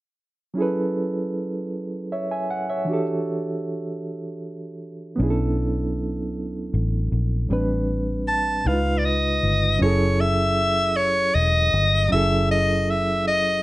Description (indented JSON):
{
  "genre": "slow six-eight R&B",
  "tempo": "52 BPM (dotted quarters)",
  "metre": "6/8",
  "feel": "straight",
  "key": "F# phrygian, F# dorian from 9.8 s",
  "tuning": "A4 = 441 Hz",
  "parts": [
    { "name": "reed electric piano", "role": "accompaniment", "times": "0.5-13.6 s", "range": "A2 to G#5", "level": "-25 LUFS", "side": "right 2 dB", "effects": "fast tremolo" },
    { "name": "vintage muted fingered electric bass", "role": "bass", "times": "5.2-13.6 s", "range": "E1 to C#2", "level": "-24 LUFS", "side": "left 1 dB", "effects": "none" },
    { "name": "bright soprano saxophone", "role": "melody", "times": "8.3-13.6 s", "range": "C#5 to A5", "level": "-21 LUFS", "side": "left 1 dB", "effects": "none" }
  ],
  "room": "light reverb",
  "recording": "nothing above 10.7 kHz",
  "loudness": "-20 LUFS",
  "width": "side -18 dB against mid",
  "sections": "0.6-9.8 A section; 9.8-13.6 B section",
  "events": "none",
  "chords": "0.6 F#m11; 2.9 Em11; 5.2 Bm11; 7.5 Am11; 8.6 C#7; 9.8 F#m9",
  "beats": "| 0.57 1.72 | 2.88 4.03 | 5.19 6.34 | 7.49 8.65 | 9.80 10.96 | 12.11 13.26"
}